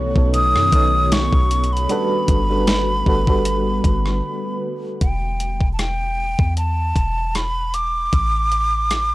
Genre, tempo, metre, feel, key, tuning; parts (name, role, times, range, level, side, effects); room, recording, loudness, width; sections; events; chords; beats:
contemporary R&B; 77 BPM; 4/4; swing 54% on 16ths; E dorian; A4 = 443 Hz
mellow FM electric piano; accompaniment; 0.0-5.0 s; B2 to C#5; -22 LUFS; right 1 dB; chorus, tremolo
ethereal airy pad; sustained chords; 0.0-5.0 s; D3 to F#4; -29 LUFS; equal; ensemble chorus, built-in reverb
warm 808-style bass; bass; 0.0-9.1 s; E1 to F#2; -21 LUFS; equal
crisp 8-bit digital drum machine; drums; 0.2-9.1 s; hi-hat, kick drum, rim click, snare drum; -19 LUFS; equal; overdrive
breathy mellow silver concert flute; melody; 0.3-9.1 s; G5 to D#6; -21 LUFS; equal
little or no reverb; dry, gritty hardware recording, transformer saturation, cassette tape; -16 LUFS; side -18 dB against mid
0.0-5.0 A section; 5.0-9.1 B section
break 4.2-5.0
0.0 B9; 1.9 Gmaj9; 5.0 E5; 8.1 Asus4
0.34 1.12 | 1.90 2.67 3.45 4.23 | 5.01 5.79 6.57 7.35 | 8.13 8.91